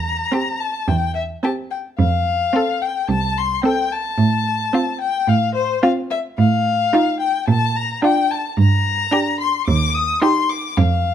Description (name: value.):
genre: quick classical-period movement for string quartet.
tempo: 109 BPM.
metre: 4/4.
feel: rubato.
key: F major.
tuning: A4 = 440 Hz.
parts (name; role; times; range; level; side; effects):
rich violin; melody; 0.0-11.1 s; C5 to Eb6; -20 LUFS; left 6 dB; none.
clear cello; bass; 0.0-11.1 s; C2 to Bb2; -18 LUFS; right 3 dB; none.
rich violin; second line; 0.3-10.6 s; F4 to A4; -23 LUFS; left 1 dB; none.
clear viola; accompaniment; 0.3-10.6 s; C4 to Eb4; -21 LUFS; right 4 dB; none.
room: light reverb.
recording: dark, warm production.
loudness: -16 LUFS.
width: side -9 dB against mid.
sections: 0.0-11.1 A section.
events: none.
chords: 0.0 C7/E; 2.0 F; 4.2 F/A; 6.4 F7/A; 7.5 Bb; 8.6 Gm; 9.7 Eb.